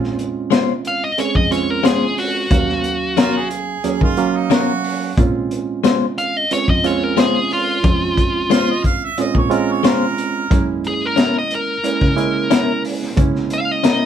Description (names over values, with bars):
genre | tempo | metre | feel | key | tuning
straight-eighth soul blues | 90 BPM | 4/4 | straight | Bb minor | A4 = 439 Hz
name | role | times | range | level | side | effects
reed electric piano | accompaniment | 0.0-14.1 s | Gb3 to F5 | -21 LUFS | right 7 dB | none
dark cello | bass | 0.0-14.1 s | Eb2 to Eb3 | -25 LUFS | equal | none
crunchy breakbeat drum kit | drums | 0.0-14.0 s | hi-hat, kick drum, snare drum | -18 LUFS | left 1 dB | none
direct-recorded clean electric guitar | stabs | 0.5-14.1 s | Gb3 to C5 | -19 LUFS | left 10 dB | none
dark smooth lead guitar | melody | 0.9-14.1 s | F4 to F5 | -20 LUFS | left 1 dB | overdrive
bright harmonica | second line | 3.2-10.7 s | Eb4 to F5 | -24 LUFS | right 5 dB | overdrive
room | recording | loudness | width
light reverb | band playing live in one room | -15 LUFS | side -9 dB against mid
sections
0.0-14.1 A section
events
none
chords
0.0 Bbm9; 2.5 Ebm9; 5.2 Bbm9; 10.5 Gb7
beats
0.52 1.18 1.85 | 2.51 3.18 3.85 4.51 | 5.18 5.84 6.51 7.18 | 7.84 8.51 9.18 9.84 | 10.51 11.18 11.84 12.51 | 13.18 13.84